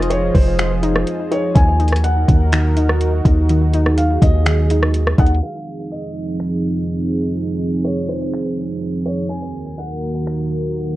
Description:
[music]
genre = hip hop, atmospheric cloud-rap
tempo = 124 BPM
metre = 4/4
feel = half-time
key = unclear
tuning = A4 = 440 Hz
[part]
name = dark analog pad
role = sustained chords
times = 0.0-11.0 s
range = Eb2 to Eb5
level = -21 LUFS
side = right 2 dB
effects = chorus, sidechain pumping
[part]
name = soft round pluck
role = arpeggios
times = 0.0-5.4 s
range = Eb3 to Eb4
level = -23 LUFS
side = left 2 dB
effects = chorus, phaser, low-pass filter, digital delay
[part]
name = warm 808-style bass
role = bass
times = 0.0-5.4 s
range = F1 to Eb2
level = -16 LUFS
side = equal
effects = none
[part]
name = smooth R&B drum kit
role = drums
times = 0.0-10.4 s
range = finger snaps, hi-hat, kick drum, rim click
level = -16 LUFS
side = equal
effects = none
[part]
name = felt-muted upright piano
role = melody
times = 0.1-10.7 s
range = C5 to Ab5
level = -25 LUFS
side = left 1 dB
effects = low-pass filter, digital delay
[sound]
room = digital ambience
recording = worn, warbling old tape, cassette tape, warbly pitch drift, low-pass filter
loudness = -15 LUFS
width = side -16 dB against mid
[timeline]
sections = 0.0-5.4 A section; 5.4-11.0 B section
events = none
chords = 0.0 Fm7; 1.6 Ebm; 5.4 Fm7; 9.3 Ebm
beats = 0.11 0.59 1.07 | 1.56 2.04 2.52 3.01 | 3.49 3.98 4.46 4.94 | 5.43 5.91 6.40 6.88 | 7.36 7.85 8.33 8.81 | 9.30 9.78 10.27 10.75

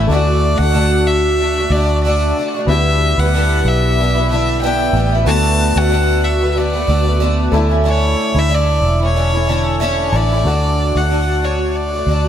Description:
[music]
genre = acoustic pop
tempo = 93 BPM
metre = 4/4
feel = swing 55% on 16ths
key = D major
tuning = A4 = 441 Hz
[part]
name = picked twelve-string acoustic guitar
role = accompaniment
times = 0.0-12.3 s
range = D3 to F#4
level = -18 LUFS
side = equal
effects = double-tracked left and right
[part]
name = warm concert grand piano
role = accompaniment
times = 0.0-12.3 s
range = A3 to A5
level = -27 LUFS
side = left 5 dB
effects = none
[part]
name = vintage muted fingered electric bass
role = bass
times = 0.0-12.3 s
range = E1 to D2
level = -16 LUFS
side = equal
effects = none
[part]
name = rich violin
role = melody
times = 0.1-12.3 s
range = C#5 to A5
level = -19 LUFS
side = left 1 dB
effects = analog delay
[sound]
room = moderate cathedral reverb, RT60 4.2 s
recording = dreamy mix soaked in reverb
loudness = -13 LUFS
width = side -10 dB against mid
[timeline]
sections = 0.0-10.5 A section; 10.5-12.3 B section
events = grand piano fill 9.5-10.5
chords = 0.1 D; 2.7 Em; 5.3 Bm7/D; 7.5 A; 10.5 D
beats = | 0.09 0.74 1.39 2.04 | 2.68 3.33 3.98 4.63 | 5.27 5.92 6.57 7.22 | 7.86 8.51 9.16 9.81 | 10.46 11.11 11.76

